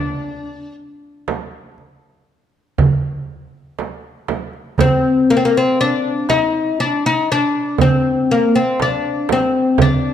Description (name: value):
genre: Arabic maqam ensemble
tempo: 120 BPM (eighths)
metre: 10/8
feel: straight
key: unclear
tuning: A4 = 436 Hz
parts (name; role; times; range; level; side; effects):
- oud; melody; 0.0-10.1 s; Bb3 to E4-50c; -15 LUFS; left 3 dB; none
- darbuka; percussion; 1.3-10.0 s; none; -19 LUFS; right 2 dB; none
- frame drum; percussion; 1.3-10.0 s; none; -21 LUFS; right 7 dB; none
room: moderate recital hall reverb, RT60 1.5 s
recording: dark, warm production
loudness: -14 LUFS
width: side -9 dB against mid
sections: 0.0-10.1 A section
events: none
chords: none